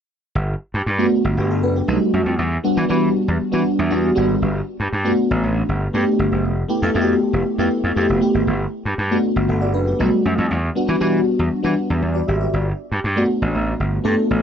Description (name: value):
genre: polished 1980s jazz-funk pop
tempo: 118 BPM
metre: 4/4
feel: straight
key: G major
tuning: A4 = 438 Hz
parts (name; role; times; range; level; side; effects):
- gritty slap bass; bass; 0.4-14.4 s; F1 to E3; -20 LUFS; equal; overdrive
- FM electric piano with soft pad layer; accompaniment; 1.0-14.4 s; G3 to F#5; -18 LUFS; equal; tremolo, ensemble chorus
room: light reverb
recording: nothing above 8.0 kHz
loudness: -17 LUFS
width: side -8 dB against mid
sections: 0.4-14.4 A section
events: none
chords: 0.4 Gmaj9; 1.9 B7b13; 2.4 Em7; 4.4 Gmaj9; 6.4 Fmaj9#11; 8.5 Gmaj9; 10.0 B7b13; 10.5 Em7; 12.5 Gmaj9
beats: | 0.35 0.86 1.37 1.88 | 2.39 2.89 3.40 3.91 | 4.42 4.92 5.43 5.94 | 6.44 6.95 7.46 7.96 | 8.47 8.98 9.49 9.99 | 10.50 11.01 11.51 12.02 | 12.53 13.04 13.54 14.05